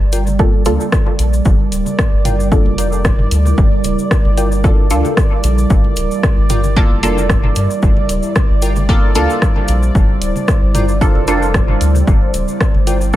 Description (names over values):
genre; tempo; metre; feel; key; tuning
dub techno; 113 BPM; 4/4; swing 53% on 16ths; G dorian; A4 = 440 Hz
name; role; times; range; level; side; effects
deep dark ambient pad; sustained chords; 0.0-13.2 s; G3 to C5; -22 LUFS; right 2 dB; chorus, built-in reverb, sidechain pumping
soft dub sub bass; bass; 0.0-13.2 s; D1 to G2; -16 LUFS; equal; sidechain pumping
bubbling stepped-filter texture; texture; 0.0-13.2 s; D5; -26 LUFS; right 3 dB; chorus, built-in reverb, sidechain pumping
wavetable chord stab; riff; 0.1-13.2 s; F4 to G5; -27 LUFS; left 1 dB; sidechain pumping, dub echo
punchy analog drum machine; drums; 0.1-13.0 s; hi-hat, rim click; -22 LUFS; equal; none
cabasa; percussion; 0.1-13.2 s; none; -30 LUFS; left 4 dB; none
electronic congas and toms; percussion; 0.3-13.2 s; none; -27 LUFS; right 1 dB; sidechain pumping on perc, sidechain pumping on toms, dub echo
filtered dub chord stab; stabs; 0.4-13.2 s; Bb3 to A4; -20 LUFS; right 1 dB; chorus, phaser, sidechain pumping, dub echo
electronic kick drum; drums; 0.4-13.2 s; none; -13 LUFS; equal; none
room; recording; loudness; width
light reverb; none; -11 LUFS; side -14 dB against mid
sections
0.0-13.2 A section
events
none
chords
0.0 Gm7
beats
0.39 0.92 | 1.46 1.99 2.52 3.05 | 3.58 4.11 4.64 5.17 | 5.70 6.23 6.76 7.29 | 7.83 8.36 8.89 9.42 | 9.95 10.48 11.01 11.54 | 12.07 12.61 13.14